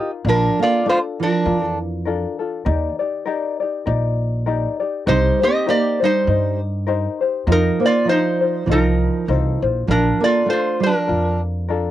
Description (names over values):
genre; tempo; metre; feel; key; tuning
Hawaiian; 100 BPM; 4/4; swing 56% on 8ths; Bb major; A4 = 440 Hz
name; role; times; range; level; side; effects
metal-body resonator slide guitar; melody; 0.0-11.4 s; D4 to Eb5; -18 LUFS; equal; cassette tape
tenor ukulele; accompaniment; 0.0-11.9 s; D4 to D5; -23 LUFS; left 7 dB; cassette tape
upright bass; bass; 0.2-11.9 s; Bb1 to G2; -20 LUFS; equal; none
fingerpicked steel-string acoustic guitar; second line; 0.3-11.4 s; F3 to C4; -22 LUFS; right 6 dB; cassette tape
room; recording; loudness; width
light reverb; home recording on cassette; -16 LUFS; side -13 dB against mid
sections
0.2-11.9 A section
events
none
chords
0.2 Bbmaj7; 2.7 Ebmaj7; 5.1 Cm7; 7.5 F7sus4; 9.9 Bbmaj7